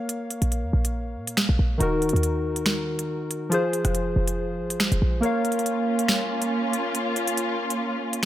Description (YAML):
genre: hip hop, drill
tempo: 140 BPM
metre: 4/4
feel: half-time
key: Bb minor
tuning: A4 = 440 Hz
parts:
  - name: warbly lo-fi synth keys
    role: accompaniment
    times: 0.0-8.3 s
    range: Eb3 to F5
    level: -26 LUFS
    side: left 1 dB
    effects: chorus
  - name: drill drum kit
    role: drums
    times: 0.1-8.3 s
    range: finger snaps, hi-hat, rim click, snare drum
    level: -26 LUFS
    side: right 1 dB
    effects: none
  - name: short 808-style bass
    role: bass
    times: 0.4-5.2 s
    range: Eb1 to Bb2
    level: -24 LUFS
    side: equal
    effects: none
  - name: dark symphonic string section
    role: sustained chords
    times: 5.2-8.3 s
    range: Bb3 to F4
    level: -27 LUFS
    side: equal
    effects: none
room: light reverb, digital ambience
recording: none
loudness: -22 LUFS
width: side -12 dB against mid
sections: 0.0-8.3 A section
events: kick muted 5.2-8.3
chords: 0.0 Bbm; 1.8 Ebm; 3.5 Fm; 5.2 Bbm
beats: | 0.09 0.52 0.95 1.38 | 1.80 2.23 2.66 3.09 | 3.52 3.95 4.38 4.80 | 5.23 5.66 6.09 6.52 | 6.95 7.38 7.80 8.23